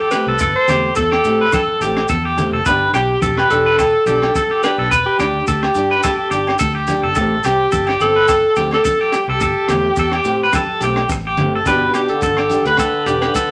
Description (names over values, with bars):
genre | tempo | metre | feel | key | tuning
highlife guitar band | 107 BPM | 4/4 | swing 55% on 16ths | G major | A4 = 439 Hz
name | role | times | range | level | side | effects
clear alto saxophone | melody | 0.0-13.5 s | G4 to C5 | -20 LUFS | equal | none
electric guitar at the edge of break-up | arpeggios | 0.0-13.5 s | G4 to B4 | -20 LUFS | equal | tremolo
electric guitar at the edge of break-up | accompaniment | 0.1-13.3 s | A3 to G4 | -25 LUFS | equal | none
compact cocktail drum kit | drums | 0.1-13.5 s | hi-hat, kick drum, rim click | -28 LUFS | equal | none
agogo bells | percussion | 0.1-13.3 s | none | -29 LUFS | equal | none
congas | percussion | 0.1-13.5 s | none | -30 LUFS | equal | none
maracas | percussion | 0.1-13.5 s | none | -35 LUFS | equal | none
fingered electric bass | bass | 0.3-13.3 s | E1 to A2 | -27 LUFS | equal | none
breathy trombone | second line | 11.7-13.5 s | B2 to D3 | -24 LUFS | equal | none
room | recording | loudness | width
wet studio reverb, RT60 0.7 s | none | -16 LUFS | mono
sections
0.0-11.7 A section; 11.7-13.5 B section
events
none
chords
0.0 Am7; 2.7 G; 7.2 Am7; 11.7 G